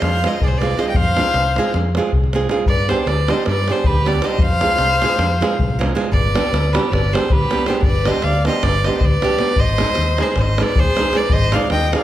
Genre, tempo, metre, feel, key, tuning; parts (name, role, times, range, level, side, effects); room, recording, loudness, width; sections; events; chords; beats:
balkan folk, Balkan wedding band; 313 BPM (eighths); 9/8; straight; A4 = 439 Hz
bright fiddle; melody; 0.0-12.0 s; B4 to G5; -21 LUFS; right 1 dB
rich violin; second line; 0.0-12.0 s; G4 to Eb5; -24 LUFS; left 4 dB
fingered electric bass; bass; 0.0-11.9 s; G1 to G2; -20 LUFS; equal
davul; percussion; 0.0-12.0 s; -20 LUFS; equal
flamenco guitar; accompaniment; 0.2-12.0 s; G3 to Ab4; -22 LUFS; right 4 dB
moderate recital hall reverb, RT60 1.6 s; dark, warm production; -15 LUFS; side -13 dB against mid
0.0-6.1 A section; 6.1-12.0 B section
0.0 Fm; 2.7 G; 4.4 Fm; 6.1 G; 9.6 Ab
0.17 0.37 0.56 0.75 | 0.94 1.14 1.33 1.52 1.71 1.90 2.10 2.29 2.48 | 2.67 2.86 3.06 3.25 3.44 3.63 3.82 4.01 4.21 | 4.40 4.59 4.78 4.97 5.17 5.36 5.55 5.74 5.93 | 6.12 6.32 6.51 6.70 6.89 7.08 7.27 7.46 7.66 | 7.85 8.04 8.23 8.42 8.61 8.80 9.00 9.19 9.38 | 9.57 9.76 9.96 10.15 10.34 10.53 10.72 10.92 11.11 | 11.30 11.49 11.68 11.88